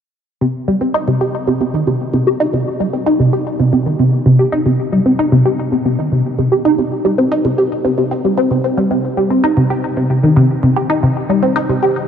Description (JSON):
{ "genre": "ambient", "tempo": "113 BPM", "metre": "4/4", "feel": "straight", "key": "C minor", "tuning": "A4 = 440 Hz", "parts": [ { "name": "resonant blip pluck", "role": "solo", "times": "0.4-11.9 s", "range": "C3 to G4", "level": "-12 LUFS", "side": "equal", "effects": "phaser, wide subtle chorus, ping-pong delay" } ], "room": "wet huge ambient reverb, RT60 8.0 s", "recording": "cassette tape", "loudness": "-12 LUFS", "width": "side -8 dB against mid", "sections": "0.4-12.1 A section", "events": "none", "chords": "none" }